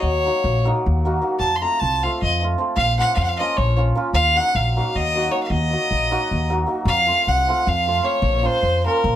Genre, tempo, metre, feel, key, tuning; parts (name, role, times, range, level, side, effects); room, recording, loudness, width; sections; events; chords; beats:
balkan folk, Balkan wedding band; 308 BPM (eighths); 7/8; straight; Eb dorian sharp4; A4 = 440 Hz
clear fiddle; melody; 0.0-9.2 s; Bb4 to C6; -20 LUFS; equal
hammered dulcimer; accompaniment; 0.0-9.2 s; F3 to Gb4; -24 LUFS; right 2 dB
upright bass; bass; 0.0-9.2 s; Bb1 to F2; -21 LUFS; equal
little or no reverb; close, detailed microphones; -17 LUFS; side -11 dB against mid
0.0-6.8 A section; 6.8-9.2 A section
0.0 Ebm; 1.4 F; 2.8 Bbm; 4.1 Ebm; 6.8 F; 8.2 Bbm
| 0.02 0.22 0.41 0.61 0.80 1.00 1.20 | 1.39 1.59 1.78 1.98 2.17 2.37 2.56 | 2.76 2.96 3.15 3.35 3.54 3.74 3.93 | 4.12 4.32 4.51 4.71 4.90 5.10 5.29 | 5.49 5.68 5.88 6.07 6.26 6.46 6.65 | 6.85 7.04 7.24 7.43 7.62 7.82 8.01 | 8.21 8.40 8.59 8.79 8.98